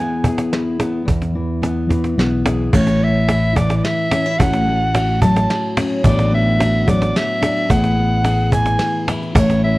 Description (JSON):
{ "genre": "acoustic folk duo or small band", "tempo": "109 BPM", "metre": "3/4", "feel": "straight", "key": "unclear", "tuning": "A4 = 440 Hz", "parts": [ { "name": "warm soprano saxophone", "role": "melody", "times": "0.0-9.8 s", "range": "C#5 to A5", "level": "-20 LUFS", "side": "right 1 dB", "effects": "none" }, { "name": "fingerpicked steel-string acoustic guitar", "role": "accompaniment", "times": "0.0-9.8 s", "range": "E2 to G#4", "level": "-19 LUFS", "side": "left 1 dB", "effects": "none" }, { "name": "cajon", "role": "percussion", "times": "0.2-9.6 s", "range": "none", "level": "-19 LUFS", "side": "right 1 dB", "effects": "none" }, { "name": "soft brush drum kit", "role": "drums", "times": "0.5-9.5 s", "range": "crash cymbal, hi-hat, kick drum, ride cymbal, snare drum", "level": "-26 LUFS", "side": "equal", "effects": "none" }, { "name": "fingered electric bass", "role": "bass", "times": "1.1-9.8 s", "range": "A1 to E2", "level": "-19 LUFS", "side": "equal", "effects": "none" }, { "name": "tambourine", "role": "percussion", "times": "9.4-9.5 s", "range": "none", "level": "-41 LUFS", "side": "right 6 dB", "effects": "none" } ], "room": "light reverb", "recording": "worn, warbling old tape, cassette tape, warbly pitch drift", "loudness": "-14 LUFS", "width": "side -19 dB against mid", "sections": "0.0-1.1 A section; 1.1-2.7 B section; 2.7-9.8 C section", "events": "none", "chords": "0.0 E; 2.7 A; 4.4 F#m/A; 6.0 Bm/A; 7.7 Eadd9/A" }